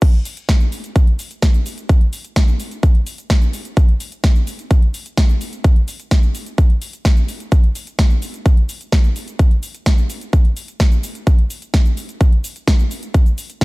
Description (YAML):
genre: EDM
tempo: 128 BPM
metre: 4/4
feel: straight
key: none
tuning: none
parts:
  - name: big-room dance drum kit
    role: drums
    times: 0.0-13.6 s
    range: crash cymbal, hi-hat, shaker, snare drum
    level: -25 LUFS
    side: equal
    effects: high-pass filter on hats, studio reverb, high-pass filter on snare, high-pass filter on cymbals, high-pass filter on perc
  - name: electronic kick drum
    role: drums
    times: 0.0-13.6 s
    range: none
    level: -12 LUFS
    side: equal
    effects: high-pass filter on kick, studio reverb
room: little or no reverb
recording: dark, warm production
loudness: -14 LUFS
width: side -23 dB against mid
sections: 0.0-13.6 A section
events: drop 0.0-13.6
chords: none